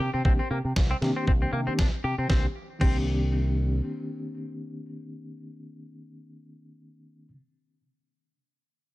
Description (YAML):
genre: nu-disco, nu disco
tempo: 117 BPM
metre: 4/4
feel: swing 56% on 16ths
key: C minor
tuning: A4 = 440 Hz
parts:
  - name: direct-recorded clean electric guitar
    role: riff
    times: 0.0-3.0 s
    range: Bb3 to G4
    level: -33 LUFS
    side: left 2 dB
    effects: wide subtle chorus, low-pass filter, digital delay
  - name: picked electric bass with an envelope filter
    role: bass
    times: 0.0-3.8 s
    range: C2 to C3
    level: -27 LUFS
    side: equal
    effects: none
  - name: bright reed electric piano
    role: accompaniment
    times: 0.2-7.3 s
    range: Eb3 to G4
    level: -33 LUFS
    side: left 1 dB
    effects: overdrive, fast tremolo, digital delay
  - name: electronic kick drum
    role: drums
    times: 0.2-3.0 s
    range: none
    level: -24 LUFS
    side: equal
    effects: studio reverb
  - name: dusty soul sampler-style drum kit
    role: drums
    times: 0.8-3.0 s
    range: crash cymbal, snare drum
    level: -35 LUFS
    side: equal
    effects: studio reverb
room: little or no reverb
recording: none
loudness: -24 LUFS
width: side -18 dB against mid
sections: 0.0-2.3 A section; 2.3-6.4 B section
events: none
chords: 0.0 Cm9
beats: | 0.24 0.76 1.27 1.78 | 2.29 2.81 3.32 3.83 | 4.35 4.86 5.37 5.88